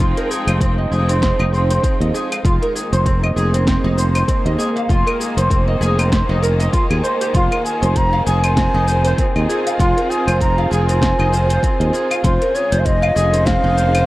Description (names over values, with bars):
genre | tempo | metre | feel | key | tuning
organic downtempo | 98 BPM | 4/4 | swing 56% on 16ths | F minor | A4 = 442 Hz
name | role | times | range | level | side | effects
rich studio string section | sustained chords | 0.0-14.1 s | Db3 to G5 | -24 LUFS | left 1 dB | sidechain pumping, shimmer reverb
oud | arpeggios | 0.0-14.1 s | C4 to F5 | -20 LUFS | right 1 dB | digital delay, shimmer reverb
sustaining fretless electric bass | bass | 0.0-14.0 s | F1 to Eb2 | -17 LUFS | equal | none
deep house drum kit | drums | 0.0-14.1 s | claves, hi-hat, shaker, snare drum | -25 LUFS | left 1 dB | overdrive
electronic kick drum | drums | 0.0-13.6 s | none | -19 LUFS | equal | overdrive
breathy bright bass bansuri | melody | 7.4-14.1 s | C5 to Bb5 | -20 LUFS | equal | shimmer reverb
room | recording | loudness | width
light reverb, small room ambience | worn, warbling old tape, cassette tape, warbly pitch drift | -14 LUFS | side -17 dB against mid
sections
0.0-14.1 A section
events
none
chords
0.0 Fm9; 7.3 Fm7; 12.2 Eb7sus4/F